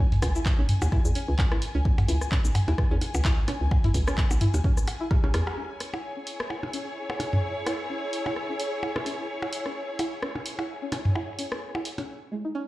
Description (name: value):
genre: minimal techno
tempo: 129 BPM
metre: 4/4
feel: swing 56% on 16ths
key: C# minor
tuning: A4 = 444 Hz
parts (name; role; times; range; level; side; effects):
- string-like resonator pluck; riff; 0.0-12.6 s; G#3 to E4; -35 LUFS; equal; chorus, sidechain pumping, digital delay
- dark symphonic string section; texture; 0.0-12.1 s; E4 to G#5; -34 LUFS; left 1 dB; sidechain pumping
- punchy analog drum machine; drums; 0.1-12.1 s; cabasa, handclaps, hi-hat, rim click; -34 LUFS; equal; none
- minimal click drum kit; percussion; 0.1-12.1 s; percussion blips, rim click, toms; -29 LUFS; equal; none
- hollow knocking FM bass; bass; 0.2-5.4 s; B1 to E2; -25 LUFS; equal; sidechain pumping
- electronic kick drum; drums; 0.2-5.2 s; none; -24 LUFS; equal; none
room: light reverb, digital ambience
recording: played on a big sound system in a bare room, stone room reverb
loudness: -24 LUFS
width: side -17 dB against mid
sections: 0.0-5.6 A section; 5.6-12.7 B section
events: drop 0.0-5.6; drum fill 5.1-5.6; band accent 5.5; filter sweep on synth pluck 5.6-12.7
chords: 0.0 C#5; 5.6 C#m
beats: 0.46 0.92 1.39 | 1.85 2.32 2.78 3.25 | 3.71 4.18 4.64 5.11 | 5.57 6.04 6.50 6.97 | 7.43 7.90 8.36 8.83 | 9.29 9.76 10.22 10.69 | 11.15 11.62 12.09 12.55